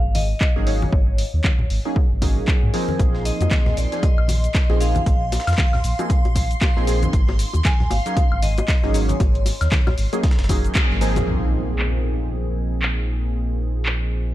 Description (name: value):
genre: deep house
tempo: 116 BPM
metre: 4/4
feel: swing 58% on 16ths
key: unclear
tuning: A4 = 440 Hz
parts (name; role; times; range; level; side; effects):
- vibraphone with medium hard mallets; melody; 0.0-9.9 s; Db5 to Ab5; -29 LUFS; left 1 dB; tape echo
- sub bass with octave; bass; 0.0-14.3 s; Gb1 to Ab2; -22 LUFS; equal; tube saturation, sidechain pumping
- punchy analog drum machine; drums; 0.1-14.0 s; cabasa, handclaps, hi-hat, woodblock; -28 LUFS; left 1 dB; low-pass filter on hats, low-pass filter on snare, low-pass filter on perc
- congas and bongos; percussion; 0.2-11.3 s; none; -28 LUFS; left 2 dB; none
- electronic kick drum; drums; 0.4-10.9 s; none; -19 LUFS; equal; none
- warm analog keys; stabs; 0.6-14.3 s; F3 to Ab4; -27 LUFS; right 1 dB; chorus, phaser, sidechain pumping, tape echo
- breakbeat sampler-style drum kit; drums; 3.0-11.3 s; hi-hat, snare drum; -37 LUFS; equal; none
- string machine, violins; texture; 3.0-11.3 s; C6; -36 LUFS; right 1 dB; ensemble chorus, sidechain pumping
- impact; sound effects; 11.3-13.3 s; none; -28 LUFS; equal; none
room: little or no reverb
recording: dark, warm production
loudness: -17 LUFS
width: side -15 dB against mid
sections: 0.0-11.3 A section; 11.3-14.3 B section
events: band accent 10.8; impact 11.3-13.3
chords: 0.0 Ab9sus4; 3.0 Bb9sus4; 7.1 Ab9sus4; 11.3 Bb9sus4